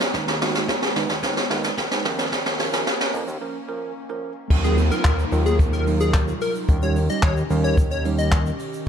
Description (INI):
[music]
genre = dance-pop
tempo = 110 BPM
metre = 4/4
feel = straight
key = unclear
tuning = A4 = 438 Hz
[part]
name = airy breathy pad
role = sustained chords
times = 0.0-8.9 s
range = Eb3 to G4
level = -33 LUFS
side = right 1 dB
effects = chorus, sidechain pumping
[part]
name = jazz brush drum kit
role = drums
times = 0.0-8.9 s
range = crash cymbal, handclaps, hi-hat, kick drum, shaker, snare drum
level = -22 LUFS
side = equal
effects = none
[part]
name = bell-like tine electric piano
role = accompaniment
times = 0.1-8.9 s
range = F3 to Cb5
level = -29 LUFS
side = right 6 dB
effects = wide subtle chorus, sidechain pumping
[part]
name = fat analog bass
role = bass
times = 0.1-8.5 s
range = Eb2 to F2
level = -24 LUFS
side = equal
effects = sidechain pumping
[part]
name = downlifter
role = sound effects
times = 4.5-8.9 s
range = none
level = -32 LUFS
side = equal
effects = none
[part]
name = plucky unison lead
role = melody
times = 4.6-8.4 s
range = Ab4 to Eb5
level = -27 LUFS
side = left 4 dB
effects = sidechain pumping, ping-pong delay
[sound]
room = studio reverb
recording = dark, warm production, high-pass filter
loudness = -19 LUFS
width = side -8 dB against mid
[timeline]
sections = 0.0-4.5 A section; 4.5-8.9 B section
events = build-up 0.0-4.5; drum fill 0.0-3.4; filter sweep 0.0-4.5; break 3.4-4.5; drop 4.5-8.9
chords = 0.1 Abm/Eb; 2.0 Bbm/Eb; 4.5 Ebmadd9; 6.7 Eb7